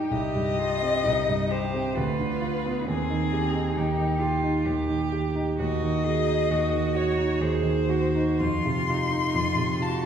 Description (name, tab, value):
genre	classical, slow romantic movement for piano trio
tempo	65 BPM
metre	3/4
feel	uneven beats, rubato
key	unclear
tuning	A4 = 441 Hz
part	warm violin	melody	0.0-10.1 s	G4 to C6	-28 LUFS	left 5 dB	none
part	rich cello	second line	0.0-10.1 s	C4 to Ab4	-31 LUFS	right 5 dB	none
part	warm concert grand piano	accompaniment	0.0-10.1 s	C2 to G4	-25 LUFS	right 1 dB	none
room	wet scoring stage reverb, RT60 1.6 s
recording	heard from further back in the room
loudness	-23 LUFS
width	side -8 dB against mid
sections	0.0-10.1 A section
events	none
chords	0.1 Cm; 2.0 Bdim/D; 2.9 Cm/Eb; 5.6 Cdim/Eb; 8.4 F5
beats	| 0.12 1.05 1.97 | 2.88 3.76 4.66 | 5.59 6.51 7.41 | 8.41 9.35